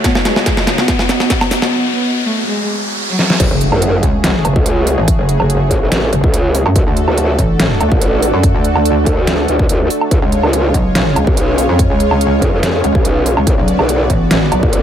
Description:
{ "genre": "heavy wobble dubstep", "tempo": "143 BPM", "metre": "4/4", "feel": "half-time", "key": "F# harmonic minor", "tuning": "A4 = 440 Hz", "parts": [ { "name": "dark cello", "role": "melody", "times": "0.0-3.3 s", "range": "F#3 to B3", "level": "-19 LUFS", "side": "equal", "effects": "digital delay" }, { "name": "lush unison pad", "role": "sustained chords", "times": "0.0-14.8 s", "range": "C#3 to D5", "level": "-21 LUFS", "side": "equal", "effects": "chorus, sidechain pumping" }, { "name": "dubstep drum kit", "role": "drums", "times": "0.0-14.8 s", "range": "crash cymbal, hi-hat, snare drum, woodblock", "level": "-17 LUFS", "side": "equal", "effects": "none" }, { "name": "electronic kick drum", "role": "drums", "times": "0.0-14.7 s", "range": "none", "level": "-16 LUFS", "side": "equal", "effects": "none" }, { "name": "riser and impact", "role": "sound effects", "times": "0.0-5.1 s", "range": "none", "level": "-20 LUFS", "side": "left 1 dB", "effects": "none" }, { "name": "ethereal airy pad", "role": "texture", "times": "0.0-1.7, 7.3-14.8 s", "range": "B3 to A5", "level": "-21 LUFS", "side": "right 1 dB", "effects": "ensemble chorus, built-in reverb, sidechain pumping" }, { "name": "growl bass", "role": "bass", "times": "3.4-14.8 s", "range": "F#1 to F#2", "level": "-14 LUFS", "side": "equal", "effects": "chorus, overdrive" }, { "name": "metallic wobble bass", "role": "bass", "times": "3.5-14.6 s", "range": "F#1 to F#2", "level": "-14 LUFS", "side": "equal", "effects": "chorus, overdrive" } ], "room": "light reverb, digital ambience", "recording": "none", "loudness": "-11 LUFS", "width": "side -10 dB against mid", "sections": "0.0-3.4 A section; 3.4-14.8 B section", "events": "build-up 0.0-3.4; drum fill 0.0-1.7, 3.2; riser 0.0-3.4; break 1.7-3.4; drop 3.4-14.8; impact 3.4-5.1", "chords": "0.0 Badd9; 3.4 F#madd9; 6.8 D; 10.1 C#; 13.5 Bm" }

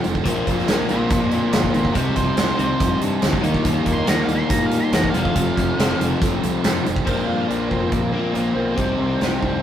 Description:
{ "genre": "classic rock", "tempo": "141 BPM", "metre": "4/4", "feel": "straight", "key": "unclear", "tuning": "A4 = 441 Hz", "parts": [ { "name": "biting overdriven guitar", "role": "riff", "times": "0.0-9.6 s", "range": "F2 to Eb4", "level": "-25 LUFS", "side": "right 5 dB", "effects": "none" }, { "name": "overdriven electric guitar", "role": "riff", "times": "0.0-9.6 s", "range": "F2 to Eb4", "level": "-22 LUFS", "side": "left 5 dB", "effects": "none" }, { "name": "huge arena drum kit", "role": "drums", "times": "0.0-9.5 s", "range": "crash cymbal, hi-hat, kick drum, snare drum", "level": "-22 LUFS", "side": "right 1 dB", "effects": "none" }, { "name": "fuzz fingered electric bass", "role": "bass", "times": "0.1-9.6 s", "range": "F1 to Bb2", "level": "-27 LUFS", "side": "right 1 dB", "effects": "overdrive" }, { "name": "octave-fuzz lead guitar", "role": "melody", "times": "0.9-9.6 s", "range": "Bb3 to C6", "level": "-26 LUFS", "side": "right 1 dB", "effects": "distortion" } ], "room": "moderate stone room reverb, RT60 1.1 s", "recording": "rough rehearsal-room recording, warm saturation", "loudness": "-17 LUFS", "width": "side -10 dB against mid", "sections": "0.0-7.1 A section; 7.1-9.6 B section", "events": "lead electric guitar solo 0.0-7.1", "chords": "0.3 Bbsus2; 2.0 Cm; 3.4 Eb; 5.1 F; 7.1 Bbsus2; 8.8 Cm" }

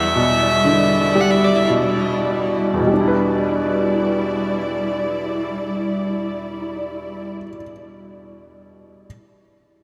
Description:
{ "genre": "celtic folk, Celtic slow air", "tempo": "47-65 BPM", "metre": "3/4", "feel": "rubato", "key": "E minor", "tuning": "A4 = 441 Hz", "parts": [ { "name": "clear fiddle", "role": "melody", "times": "0.0-1.7 s", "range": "D5 to F#5", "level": "-23 LUFS", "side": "equal", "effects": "digital delay" }, { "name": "bright upright piano", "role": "accompaniment", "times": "0.0-9.1 s", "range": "E2 to B4", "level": "-23 LUFS", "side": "equal", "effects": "none" }, { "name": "muted studio string section", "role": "sustained chords", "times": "0.0-7.3 s", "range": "G3 to D5", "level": "-24 LUFS", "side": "equal", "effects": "none" } ], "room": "wet huge ambient reverb, RT60 4.7 s", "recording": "dreamy mix soaked in reverb", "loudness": "-19 LUFS", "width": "mono", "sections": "0.0-2.9 A section; 2.9-6.6 B section", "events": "slowing down 0.0-2.9", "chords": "0.0 Em7" }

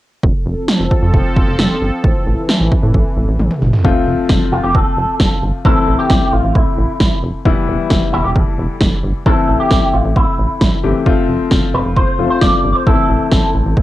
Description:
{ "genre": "synth-pop", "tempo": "133 BPM", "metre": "4/4", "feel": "straight", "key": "A minor", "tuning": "A4 = 440 Hz", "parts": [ { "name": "sweeping resonant pad", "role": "sustained chords", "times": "0.2-3.8 s", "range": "E3 to A4", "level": "-21 LUFS", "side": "equal", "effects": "chorus, cassette tape" }, { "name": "rubbery square bass", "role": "bass", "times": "0.2-13.8 s", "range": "E1 to A2", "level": "-17 LUFS", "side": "equal", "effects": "none" }, { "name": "80s electronic pad drums", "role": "drums", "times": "0.2-13.8 s", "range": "kick drum, snare drum, toms", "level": "-15 LUFS", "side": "equal", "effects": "gated reverb on snare and toms, overdrive, cassette tape" }, { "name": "clear baby grand piano", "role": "accompaniment", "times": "3.8-13.8 s", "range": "E3 to G4", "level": "-18 LUFS", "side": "left 6 dB", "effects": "cassette tape" }, { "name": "electric guitar with an envelope filter", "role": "melody", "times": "4.5-13.8 s", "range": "E4 to D5", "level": "-18 LUFS", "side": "right 1 dB", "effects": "ensemble chorus, cassette tape" } ], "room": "moderate studio reverb, RT60 0.6 s", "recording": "home recording on cassette", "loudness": "-12 LUFS", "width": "side -15 dB against mid", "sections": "0.2-3.8 A section; 3.8-13.8 B section", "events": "drum fill 3.4-3.8", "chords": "0.2 F; 2.0 Am; 3.8 F; 5.6 Am; 7.5 Em; 9.3 Am; 11.1 F; 12.9 Am" }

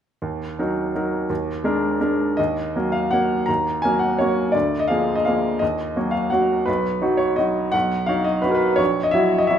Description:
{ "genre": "classical, piano waltz", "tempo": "168 BPM", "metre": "3/4", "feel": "uneven beats, rubato", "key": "Eb minor", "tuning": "A4 = 441 Hz", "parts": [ { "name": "clear baby grand piano", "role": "solo", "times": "0.2-9.6 s", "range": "Bb1 to Bb5", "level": "-18 LUFS", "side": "equal", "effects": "none" } ], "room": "moderate recital hall reverb, RT60 1.4 s", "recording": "minimal, uncompressed stereo recording", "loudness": "-19 LUFS", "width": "side -9 dB against mid", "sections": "0.2-2.4 A section; 2.4-9.6 B section", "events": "none", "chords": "0.2 Ebm; 1.3 Bb7/Eb; 2.4 Ebm; 4.5 Bb7/D; 5.6 Ebm; 6.7 B; 8.8 Gb7/Bb" }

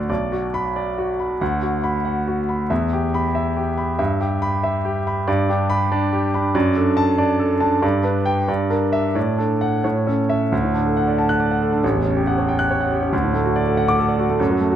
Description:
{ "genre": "classical, virtuoso piano study", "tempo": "93 BPM (dotted quarters)", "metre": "6/8", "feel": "rubato", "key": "B minor, D major from 5.3 s", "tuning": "A4 = 440 Hz", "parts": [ { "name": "clear concert grand piano", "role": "solo", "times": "0.0-14.8 s", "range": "A1 to F#6", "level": "-18 LUFS", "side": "right 1 dB", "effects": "none" } ], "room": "moderate recital hall reverb, RT60 1.6 s", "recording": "close, detailed microphones", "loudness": "-18 LUFS", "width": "side -10 dB against mid", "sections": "0.1-10.5 A section; 10.5-14.8 B section", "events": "none", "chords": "0.1 Bm; 1.4 Bm/D; 2.7 Em; 4.0 Em/G; 5.3 G; 6.5 D/F#; 7.8 G; 8.5 Em7b5/G; 9.2 D/A; 9.8 A; 10.5 D; 11.8 A6; 13.1 D" }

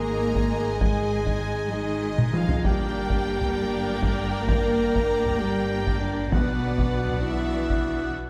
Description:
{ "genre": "cinematic, epic orchestral film score", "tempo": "65 BPM (dotted quarters)", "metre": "6/8", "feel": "straight", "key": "unclear", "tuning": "A4 = 440 Hz", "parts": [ { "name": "clear symphonic violin section", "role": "melody", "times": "0.0-8.1 s", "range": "B4 to A#5", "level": "-41 LUFS", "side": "equal", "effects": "none" }, { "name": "clear symphonic violin section", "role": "second line", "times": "0.0-8.1 s", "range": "D5 to G#5", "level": "-37 LUFS", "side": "equal", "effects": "none" }, { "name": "warm symphonic viola section", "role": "accompaniment", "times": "0.0-8.1 s", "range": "G#3 to Bb4", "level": "-35 LUFS", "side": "equal", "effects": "none" }, { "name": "chamber organ, soft reed", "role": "sustained chords", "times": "0.0-8.2 s", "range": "G#3 to G#5", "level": "-36 LUFS", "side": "equal", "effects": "none" }, { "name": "mellow French horn section", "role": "sustained chords", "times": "0.0-8.1 s", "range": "B3 to Bb4", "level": "-31 LUFS", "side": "equal", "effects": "none" }, { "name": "rich symphonic cello section", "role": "bass", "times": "0.0-8.2 s", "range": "B2 to A#3", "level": "-34 LUFS", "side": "equal", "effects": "none" }, { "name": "rich symphonic double bass section", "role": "bass", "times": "0.0-8.2 s", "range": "G1 to B1", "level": "-33 LUFS", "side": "equal", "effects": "none" }, { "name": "solo taiko drums", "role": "drums", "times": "0.4-8.1 s", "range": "none", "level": "-29 LUFS", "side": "equal", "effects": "none" }, { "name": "timpani", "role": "percussion", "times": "6.3-7.2 s", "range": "B2", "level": "-35 LUFS", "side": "equal", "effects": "none" } ], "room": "moderate scoring stage reverb, RT60 1.9 s", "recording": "none", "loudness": "-24 LUFS", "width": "mono", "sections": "0.0-8.3 A section", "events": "drum fill 2.2-2.6", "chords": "0.0 G#5; 2.6 Gm; 6.3 Bm" }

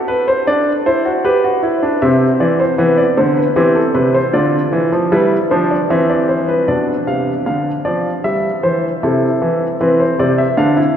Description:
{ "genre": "classical, baroque-style 3-part fugue for grand piano", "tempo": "77 BPM", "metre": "3/4", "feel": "straight", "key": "unclear", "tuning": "A4 = 440 Hz", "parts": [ { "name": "warm baby grand piano", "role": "solo", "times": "0.0-11.0 s", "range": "B2 to F5", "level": "-12 LUFS", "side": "equal", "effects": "none" } ], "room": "wet cathedral reverb, RT60 6.8 s", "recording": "recorded in a church or concert hall", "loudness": "-12 LUFS", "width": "side -8 dB against mid", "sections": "0.0-6.7 A section; 6.7-11.0 B section", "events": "none", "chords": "0.0 F#(b5, no3); 1.2 G; 2.0 C; 3.6 C/E; 4.3 Bdim/D; 5.9 C/E; 6.7 Bdim; 8.2 Em/G; 9.0 Am/C" }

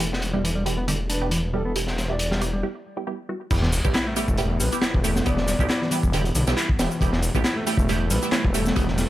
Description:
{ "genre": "breakbeat, breaks", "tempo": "137 BPM", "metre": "4/4", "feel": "swing 54% on 16ths", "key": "E minor", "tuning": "A4 = 440 Hz", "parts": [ { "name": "phased analog pad", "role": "sustained chords", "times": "0.0-9.1 s", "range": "E3 to B3", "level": "-33 LUFS", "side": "equal", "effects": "phaser, chorus, sidechain pumping" }, { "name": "modern bright picked electric bass", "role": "riff", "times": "0.0-9.0 s", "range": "D3 to E4", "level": "-28 LUFS", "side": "equal", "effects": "overdrive, low-pass filter, tape echo" }, { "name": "filtered dub chord stab", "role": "stabs", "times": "0.0-8.9 s", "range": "G3 to G4", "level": "-30 LUFS", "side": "right 4 dB", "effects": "phaser, vintage 12-bit sampler grit, tape echo" }, { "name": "detuned saw bass", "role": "bass", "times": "0.0-9.1 s", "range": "E1 to B1", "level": "-25 LUFS", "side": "equal", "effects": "none" }, { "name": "crunchy breakbeat drum kit", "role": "drums", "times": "0.0-9.1 s", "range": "crash cymbal, hi-hat, kick drum, snare drum", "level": "-25 LUFS", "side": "equal", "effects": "high-pass filter on kick, high-pass filter on hats, high-pass filter on cymbals, high-pass filter on snare, high-pass filter on room" }, { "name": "breathy flute-like synth lead", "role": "melody", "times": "1.1-8.7 s", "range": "A4 to D5", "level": "-33 LUFS", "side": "equal", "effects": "chorus, old record sound, tape echo" }, { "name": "house drum kit", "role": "drums", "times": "3.5-9.1 s", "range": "handclaps, hi-hat, shaker", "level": "-30 LUFS", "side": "left 1 dB", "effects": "none" }, { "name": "sub drop", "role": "sound effects", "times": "3.6-5.3 s", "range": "none", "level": "-30 LUFS", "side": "equal", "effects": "none" } ], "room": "light reverb", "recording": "none", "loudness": "-21 LUFS", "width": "side -14 dB against mid", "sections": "0.0-3.5 A section; 3.5-9.1 B section", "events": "break 2.6-3.5; drop 3.5-9.1; impact 3.5-5.3", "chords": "0.0 Em" }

